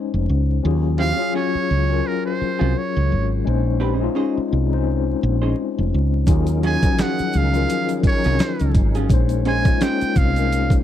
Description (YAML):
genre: R&B, neo-soul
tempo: 85 BPM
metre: 4/4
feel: swing 56% on 16ths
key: Eb dorian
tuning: A4 = 439 Hz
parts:
  - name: overdriven tine electric piano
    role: accompaniment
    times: 0.0-10.8 s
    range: F3 to C5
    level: -23 LUFS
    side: left 11 dB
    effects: fast tremolo
  - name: woody fretless electric bass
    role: bass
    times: 0.1-10.8 s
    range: F1 to Eb2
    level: -19 LUFS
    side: equal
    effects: none
  - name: trumpet with metal mute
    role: melody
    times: 1.0-10.8 s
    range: Bb4 to Ab5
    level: -25 LUFS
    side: right 4 dB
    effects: none
  - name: vintage hollow-body jazz guitar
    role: second line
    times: 1.0-10.0 s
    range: Gb3 to C5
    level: -26 LUFS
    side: right 6 dB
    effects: none
  - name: tonewheel organ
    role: sustained chords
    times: 6.3-10.8 s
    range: Eb3 to Bb4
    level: -29 LUFS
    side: right 3 dB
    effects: slow rotary speaker, chorus vibrato
  - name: dusty soul sampler-style drum kit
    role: drums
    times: 6.3-10.8 s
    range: hi-hat, kick drum, snare drum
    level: -18 LUFS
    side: equal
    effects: none
  - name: tube shaker and finger snaps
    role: percussion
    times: 6.3-10.8 s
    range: none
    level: -42 LUFS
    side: right 1 dB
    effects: none
room: digital ambience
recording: dry, close 1970s-style studio recording, vinyl crackle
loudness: -17 LUFS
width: side -11 dB against mid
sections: 0.0-10.8 A section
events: none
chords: 0.0 Bbm11 (rootless); 0.6 Ebm11; 3.5 Bbm11; 6.3 Ebm11; 9.1 Bbm11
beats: | 0.63 1.33 2.04 2.74 | 3.45 4.16 4.86 5.57 | 6.27 6.98 7.68 8.39 | 9.10 9.80 10.51